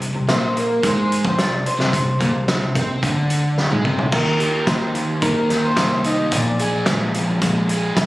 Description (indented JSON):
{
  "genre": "indie rock",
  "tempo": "109 BPM",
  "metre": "4/4",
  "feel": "straight",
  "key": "C minor",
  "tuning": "A4 = 440 Hz",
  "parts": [
    { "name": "raw garage guitar", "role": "riff", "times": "0.0-8.1 s", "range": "Bb2 to Ab4", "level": "-21 LUFS", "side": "equal", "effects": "overdrive" },
    { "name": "fingered electric bass", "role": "bass", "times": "0.0-8.1 s", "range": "Bb1 to Eb3", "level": "-25 LUFS", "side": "equal", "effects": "none" },
    { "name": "loose indie drum kit", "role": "drums", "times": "0.0-8.1 s", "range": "crash cymbal, hi-hat, kick drum, snare drum, toms", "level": "-21 LUFS", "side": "equal", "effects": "none" },
    { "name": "electric guitar through a small old amp", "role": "melody", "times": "0.3-7.1 s", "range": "Bb4 to Eb5", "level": "-24 LUFS", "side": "equal", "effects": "tape echo" }
  ],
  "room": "moderate spring reverb, RT60 1.9 s",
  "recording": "recorded on a phone in the room, studio reverb, compression",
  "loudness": "-16 LUFS",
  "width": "side -17 dB against mid",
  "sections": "0.0-4.1 A section; 4.1-8.1 B section",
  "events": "drum fill 3.6-4.1",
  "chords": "0.0 C5; 4.1 Eb; 6.3 Bb7"
}